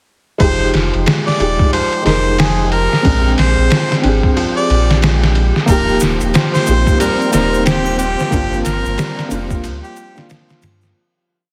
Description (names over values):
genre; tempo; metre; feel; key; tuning
trip hop; 91 BPM; 4/4; swing 60% on 16ths; F dorian; A4 = 440 Hz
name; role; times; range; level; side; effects
clear harmonica; melody; 0.4-10.3 s; G4 to D5; -22 LUFS; equal; vintage 12-bit sampler grit, tape echo
felt-muted upright piano; accompaniment; 0.4-11.0 s; Ab3 to C5; -22 LUFS; equal; tremolo, tape echo
Celtic harp; arpeggios; 0.4-11.0 s; F3 to Ab3; -26 LUFS; equal; tape echo
soft dub sub bass; bass; 0.4-10.9 s; Eb1 to G2; -19 LUFS; equal; none
trip hop sampler-style drum kit; drums; 0.4-11.0 s; kick drum, ride cymbal, snare drum; -19 LUFS; equal; overdrive
wind-like tuned noise texture; texture; 2.0-11.0 s; G4; -32 LUFS; equal; none
warm studio string section; sustained chords; 5.7-11.0 s; C4; -28 LUFS; equal; none
egg shaker and triangle; percussion; 5.7-10.9 s; none; -32 LUFS; equal; none
room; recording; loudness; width
studio reverb; heavily compressed radio sound; -14 LUFS; mono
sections
0.4-11.0 groove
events
fade-out 7.4-11.0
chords
0.4 Fm7; 3.0 Bb7; 5.7 Eb; 8.3 Gm7